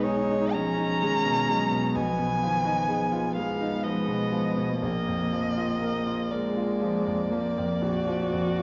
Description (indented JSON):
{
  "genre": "classical, slow romantic movement for piano quartet",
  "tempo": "40-43 BPM (dotted quarters)",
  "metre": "12/8",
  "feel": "rubato",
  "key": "unclear",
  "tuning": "A4 = 439 Hz",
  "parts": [
    { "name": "warm violin", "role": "melody", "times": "0.0-8.6 s", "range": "Db5 to Bb5", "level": "-32 LUFS", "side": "equal", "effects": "none" },
    { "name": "warm cello", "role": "second line", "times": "0.0-8.6 s", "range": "Eb3 to Bb3", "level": "-34 LUFS", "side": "equal", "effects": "none" },
    { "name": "bright concert grand piano", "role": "accompaniment", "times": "0.0-8.6 s", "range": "Bb1 to Bb4", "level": "-31 LUFS", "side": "equal", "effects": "none" },
    { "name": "warm viola", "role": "accompaniment", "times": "0.0-8.6 s", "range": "Ab3 to Gb4", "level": "-35 LUFS", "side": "equal", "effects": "none" }
  ],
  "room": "wet recital hall reverb, RT60 1.3 s",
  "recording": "dark, warm production, nothing above 7.5 kHz",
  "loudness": "-27 LUFS",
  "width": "mono",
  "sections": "0.0-8.6 A section",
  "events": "none",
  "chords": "0.0 Abm/Cb; 2.0 Fm7b5/Cb; 4.8 Bb"
}